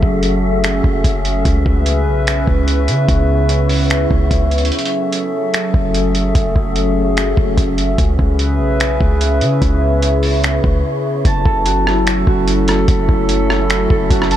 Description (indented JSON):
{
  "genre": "hip hop, atmospheric cloud-rap",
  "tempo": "147 BPM",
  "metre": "4/4",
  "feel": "half-time",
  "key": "F# minor",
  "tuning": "A4 = 442 Hz",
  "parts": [
    { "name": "hollow soft pad", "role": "sustained chords", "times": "0.0-14.4 s", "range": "C#3 to E5", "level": "-17 LUFS", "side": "equal", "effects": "chorus, sidechain pumping" },
    { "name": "warm 808-style bass", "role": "bass", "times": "0.0-14.4 s", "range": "F#1 to C#3", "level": "-17 LUFS", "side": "equal", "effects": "none" },
    { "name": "lo-fi sampler-style drum kit", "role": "drums", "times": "0.0-14.4 s", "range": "finger snaps, hi-hat, kick drum, rim click", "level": "-18 LUFS", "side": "equal", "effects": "none" },
    { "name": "wind-like tuned noise texture", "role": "texture", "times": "0.0-14.4 s", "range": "A3 to E5", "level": "-25 LUFS", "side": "equal", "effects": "built-in reverb" },
    { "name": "Celtic harp", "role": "arpeggios", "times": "11.3-14.4 s", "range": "F#4 to A5", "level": "-20 LUFS", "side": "right 3 dB", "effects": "low-pass filter, ping-pong delay" }
  ],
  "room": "little or no reverb",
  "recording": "none",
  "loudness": "-13 LUFS",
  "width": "side -11 dB against mid",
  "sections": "0.0-11.2 A section; 11.2-14.4 B section",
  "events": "break 4.7-5.5, 10.8-11.2",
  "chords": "0.0 F#m7; 1.5 C#m7; 4.7 F#m7; 8.0 C#m7; 11.2 F#m7",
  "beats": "0.23 0.64 1.04 | 1.45 1.86 2.27 2.68 | 3.09 3.49 3.90 4.31 | 4.72 5.13 5.54 5.94 | 6.35 6.76 7.17 7.58 | 7.98 8.39 8.80 9.21 | 9.62 10.03 10.43 10.84 | 11.25 11.66 12.06 12.47 | 12.88 13.29 13.70 14.11"
}